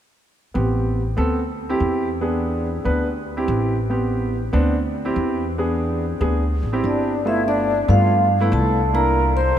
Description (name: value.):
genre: jazz.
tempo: 143 BPM.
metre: 4/4.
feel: straight.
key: G mixolydian.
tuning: A4 = 440 Hz.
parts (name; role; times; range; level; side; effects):
warm grand piano; accompaniment; 0.5-9.6 s; A3 to B4; -22 LUFS; right 1 dB; none.
upright bass; bass; 0.6-9.6 s; G1 to G2; -22 LUFS; equal; none.
hollow concert flute; second line; 6.8-9.6 s; D4 to C5; -24 LUFS; left 4 dB; none.
vibraphone with medium mallets; melody; 6.9-9.6 s; D5 to C6; -21 LUFS; right 2 dB; none.
room: moderate cathedral reverb, RT60 6.6 s.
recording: in a vast, echoing space.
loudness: -18 LUFS.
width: side -10 dB against mid.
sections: 0.6-7.3 A section; 7.3-9.6 B section.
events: none.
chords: 0.6 Am9; 1.4 D9sus4; 2.2 E7; 3.1 D9sus4; 3.9 Am9; 4.7 D9sus4; 5.6 E7; 6.4 D9sus4; 7.3 G9; 8.9 C9.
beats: | 0.55 0.97 1.39 1.81 | 2.23 2.65 3.07 3.48 | 3.90 4.32 4.74 5.16 | 5.58 6.00 6.42 6.84 | 7.26 7.68 8.10 8.52 | 8.94 9.36.